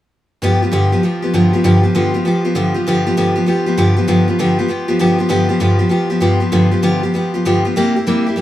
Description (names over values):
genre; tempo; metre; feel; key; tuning
rock; 196 BPM; 4/4; swing 64% on 8ths; G mixolydian; A4 = 440 Hz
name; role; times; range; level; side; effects
picked steel-string acoustic guitar; solo; 0.4-8.4 s; G2 to G4; -12 LUFS; equal; none
room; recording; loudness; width
moderate stone room reverb, RT60 1.0 s; band playing live in one room; -12 LUFS; side -13 dB against mid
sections
0.4-2.9 A section; 2.9-8.4 B section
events
none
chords
0.4 G7; 7.8 C7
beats
| 0.42 0.73 1.03 1.34 | 1.64 1.95 2.25 2.56 | 2.87 3.17 3.48 3.78 | 4.09 4.39 4.70 5.01 | 5.31 5.62 5.92 6.23 | 6.53 6.84 7.15 7.45 | 7.76 8.06 8.37